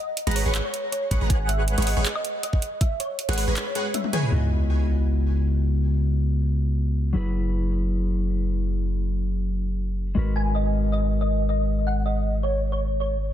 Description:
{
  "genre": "future bass",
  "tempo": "159 BPM",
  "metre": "4/4",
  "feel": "half-time",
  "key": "unclear",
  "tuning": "A4 = 440 Hz",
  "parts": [
    { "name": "thumb-piano-like synth pluck", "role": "melody", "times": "0.0-4.3, 10.4-13.3 s", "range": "B4 to G#5", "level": "-29 LUFS", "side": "equal", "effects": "ensemble chorus, sidechain pumping, dub echo" },
    { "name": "dubstep drum kit", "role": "drums", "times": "0.2-4.3 s", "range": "handclaps, hi-hat, toms, woodblock", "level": "-29 LUFS", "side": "equal", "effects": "none" },
    { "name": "airy dreamy lead", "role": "arpeggios", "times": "0.3-4.3 s", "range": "F#5 to C#6", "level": "-37 LUFS", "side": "equal", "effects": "chorus, sidechain pumping, digital delay" },
    { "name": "supersaw stab", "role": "riff", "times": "0.3-4.3 s", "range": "G#3 to C#6", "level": "-30 LUFS", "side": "right 1 dB", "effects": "sidechain pumping, low-pass filter, digital delay" },
    { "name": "long sustained 808-style bass", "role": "bass", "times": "0.3-13.3 s", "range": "F#1 to C#2", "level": "-23 LUFS", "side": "equal", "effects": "sidechain pumping" },
    { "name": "electronic kick drum", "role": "drums", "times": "1.1-2.9 s", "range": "none", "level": "-22 LUFS", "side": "equal", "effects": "none" },
    { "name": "mellow electric guitar", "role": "accompaniment", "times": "4.3-13.2 s", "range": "C#3 to D#5", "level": "-28 LUFS", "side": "left 6 dB", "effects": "sidechain pumping, digital delay" },
    { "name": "sub drop", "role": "sound effects", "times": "4.3-5.8 s", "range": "none", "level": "barely audible", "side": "none", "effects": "none" }
  ],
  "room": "digital ambience",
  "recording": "dense, heavily limited modern master",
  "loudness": "-22 LUFS",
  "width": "side -11 dB against mid",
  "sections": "0.0-4.3 A section; 4.3-13.3 B section",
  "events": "drop 0.0-4.3; drum fill 3.9-4.3; impact 4.3-5.8",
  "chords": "0.0 G#m9; 1.3 Emaj13/G#; 4.3 C#m11; 7.2 F#9sus4; 10.2 G#m9"
}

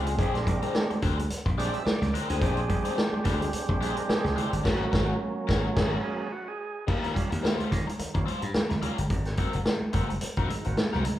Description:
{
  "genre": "funk",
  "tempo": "108 BPM",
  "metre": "4/4",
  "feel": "swing 56% on 16ths",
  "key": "Bb mixolydian",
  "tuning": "A4 = 441 Hz",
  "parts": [
    { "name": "overdriven semi-hollow guitar", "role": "accompaniment", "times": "0.0-11.1 s", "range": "G3 to C5", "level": "-34 LUFS", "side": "left 5 dB", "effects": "wah" },
    { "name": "overdriven tonewheel organ", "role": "stabs", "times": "0.0-11.2 s", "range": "Ab2 to E5", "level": "-33 LUFS", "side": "right 4 dB", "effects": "none" },
    { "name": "slap bass", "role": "bass", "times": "0.0-11.0 s", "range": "Gb1 to Eb3", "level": "-31 LUFS", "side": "equal", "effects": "none" },
    { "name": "vintage drum kit", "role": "drums", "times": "0.1-11.2 s", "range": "crash cymbal, hi-hat, kick drum, snare drum", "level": "-28 LUFS", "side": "equal", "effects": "none" },
    { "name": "congas", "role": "percussion", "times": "0.2-11.2 s", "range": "none", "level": "-38 LUFS", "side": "right 3 dB", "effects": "none" }
  ],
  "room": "moderate large studio reverb, RT60 0.8 s",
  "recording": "band playing live in one room",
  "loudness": "-25 LUFS",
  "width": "side -13 dB against mid",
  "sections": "0.0-6.9 A section; 6.9-11.2 B section",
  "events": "tonewheel organ solo 0.0-6.9; band accent 4.6-6.9",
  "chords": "0.0 Bb13; 4.6 Ab9sus4; 6.9 Eb9; 9.1 Ab9"
}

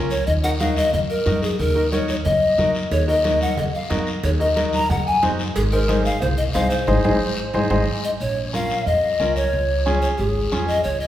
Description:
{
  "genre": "latin, cumbia",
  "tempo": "182 BPM",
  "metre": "4/4",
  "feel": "straight",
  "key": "unclear",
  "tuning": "A4 = 438 Hz",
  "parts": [
    { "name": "clear upright piano", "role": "accompaniment", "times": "0.0-10.8 s", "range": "Db4 to Db5", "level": "-25 LUFS", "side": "equal", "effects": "none" },
    { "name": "upright bass", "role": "bass", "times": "0.0-11.1 s", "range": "Ab1 to Gb2", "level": "-23 LUFS", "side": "equal", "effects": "none" },
    { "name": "mellow hollow polished pan flute", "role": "melody", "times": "0.1-11.1 s", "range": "Ab4 to Bb5", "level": "-21 LUFS", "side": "left 1 dB", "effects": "none" },
    { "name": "guiro", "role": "percussion", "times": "0.1-11.1 s", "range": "none", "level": "-33 LUFS", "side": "left 3 dB", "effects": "none" },
    { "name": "congas", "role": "percussion", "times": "0.6-11.0 s", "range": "none", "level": "-29 LUFS", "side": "equal", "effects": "none" },
    { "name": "cowbell and timbales", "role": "percussion", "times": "2.9-7.8 s", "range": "none", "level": "-32 LUFS", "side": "right 3 dB", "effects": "none" }
  ],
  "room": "wet recital hall reverb, RT60 1.7 s",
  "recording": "recorded in a church or concert hall",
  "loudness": "-18 LUFS",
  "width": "side -12 dB against mid",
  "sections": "0.0-8.2 A section; 8.2-11.1 B section",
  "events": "band accent 6.9-8.2",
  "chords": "0.3 Ebm; 5.6 Ab; 8.2 Bbm; 9.5 Db"
}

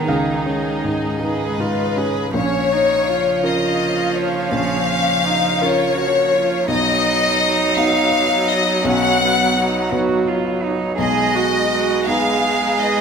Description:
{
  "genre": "neoclassical piano and strings",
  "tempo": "56 BPM (dotted quarters)",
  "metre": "6/8",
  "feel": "rubato",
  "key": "unclear",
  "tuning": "A4 = 440 Hz",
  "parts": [
    { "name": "warm chamber violin section", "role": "melody", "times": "0.0-13.0 s", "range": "Ab4 to F#5", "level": "-18 LUFS", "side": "left 4 dB", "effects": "none" },
    { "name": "warm cello", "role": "second line", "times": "0.0-13.0 s", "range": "Eb3 to Ab4", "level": "-22 LUFS", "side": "right 6 dB", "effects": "none" },
    { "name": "felt-muted upright piano", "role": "accompaniment", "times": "0.0-13.0 s", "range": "Bb1 to F5", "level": "-23 LUFS", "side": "left 1 dB", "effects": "none" },
    { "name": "rich viola", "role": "accompaniment", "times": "0.0-13.0 s", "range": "F3 to Ab4", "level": "-24 LUFS", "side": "right 3 dB", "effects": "none" },
    { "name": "warm chamber string section", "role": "sustained chords", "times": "0.0-13.0 s", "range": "Db3 to F5", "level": "-29 LUFS", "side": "equal", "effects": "none" }
  ],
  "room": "moderate scoring stage reverb, RT60 1.7 s",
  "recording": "minimal, uncompressed stereo recording",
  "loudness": "-15 LUFS",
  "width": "side -6 dB against mid",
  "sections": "0.0-2.4 A section; 2.4-13.0 B section",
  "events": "none",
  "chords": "0.1 Dbadd9; 2.4 Bbm; 6.7 B; 11.0 Abm/Cb"
}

